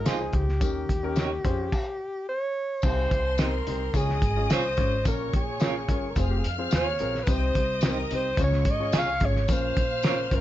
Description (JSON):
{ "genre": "uptempo 1960s-style soul", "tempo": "108 BPM", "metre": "4/4", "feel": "straight", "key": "unclear", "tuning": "A4 = 439 Hz", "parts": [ { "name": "mellow alto saxophone", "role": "melody", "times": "0.0-10.4 s", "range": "G4 to F5", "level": "-29 LUFS", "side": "right 1 dB", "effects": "none" }, { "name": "clear grand piano", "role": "accompaniment", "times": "0.0-10.4 s", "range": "Bb2 to F5", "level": "-33 LUFS", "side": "left 4 dB", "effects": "none" }, { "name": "semi-hollow electric guitar", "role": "stabs", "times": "0.1-10.2 s", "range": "Eb4 to Db5", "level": "-31 LUFS", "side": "right 7 dB", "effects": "tremolo" }, { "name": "upright bass", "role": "bass", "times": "0.1-10.4 s", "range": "F1 to F2", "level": "-29 LUFS", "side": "equal", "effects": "none" }, { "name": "cloth-damped thuddy drum kit", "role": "drums", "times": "0.1-10.4 s", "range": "crash cymbal, hi-hat, kick drum, snare drum", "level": "-27 LUFS", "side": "equal", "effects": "none" }, { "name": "tambourine", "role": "percussion", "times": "0.1-10.2 s", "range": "none", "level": "-42 LUFS", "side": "left 4 dB", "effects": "none" }, { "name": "rich studio violin section", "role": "second line", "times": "2.8-10.4 s", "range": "C5 to F6", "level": "-35 LUFS", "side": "left 2 dB", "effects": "none" } ], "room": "light reverb", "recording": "dark, warm production, nothing above 7.7 kHz", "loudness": "-23 LUFS", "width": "side -13 dB against mid", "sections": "0.0-2.8 A section; 2.8-10.4 B section", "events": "stop 1.7-2.8", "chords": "0.0 Ab6; 0.6 Eb7; 1.4 Dbmaj7/F; 2.8 Cm; 3.9 Db; 5.1 Bbm; 6.2 Fm; 7.3 Cm; 8.4 Db; 9.5 Bbm", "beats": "0.05 | 0.61 1.17 1.72 2.28 | 2.84 3.39 3.95 4.50 | 5.06 5.61 6.17 6.72 | 7.28 7.83 8.39 8.94 | 9.49 10.04" }